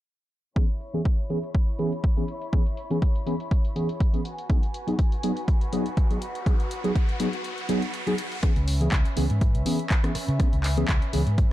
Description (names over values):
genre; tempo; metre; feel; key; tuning
filtered disco house; 122 BPM; 4/4; swing 54% on 16ths; C# minor; A4 = 440 Hz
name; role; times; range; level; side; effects
mellow tine electric piano; accompaniment; 0.6-11.2 s; E3 to G#4; -28 LUFS; equal; phaser, sidechain pumping, low-pass filter
bright studio violin section; sustained chords; 0.6-11.5 s; C#4 to B5; -37 LUFS; equal; sidechain pumping, low-pass filter
electronic kick drum; drums; 0.6-11.5 s; none; -22 LUFS; equal; overdrive
punchy analog drum machine; drums; 0.6-11.5 s; handclaps, hi-hat, rim click; -34 LUFS; left 1 dB; overdrive, low-pass filter on hats, low-pass filter on snare
maracas; percussion; 0.6-8.4 s; none; barely audible; none; none
riser; sound effects; 5.2-8.4 s; none; -38 LUFS; equal; none
vintage muted fingered electric bass; bass; 8.4-11.4 s; C#2 to C#3; -25 LUFS; equal; sidechain pumping, low-pass filter
room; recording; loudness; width
digital ambience; dark, warm production; -22 LUFS; side -14 dB against mid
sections
0.6-8.4 A section; 8.4-11.5 B section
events
filter sweep on drum 0.6-8.4; filter sweep 0.6-8.4; riser 5.2-8.4; break 7.4-8.4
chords
0.6 C#m7; 4.2 G#m7; 8.4 C#m7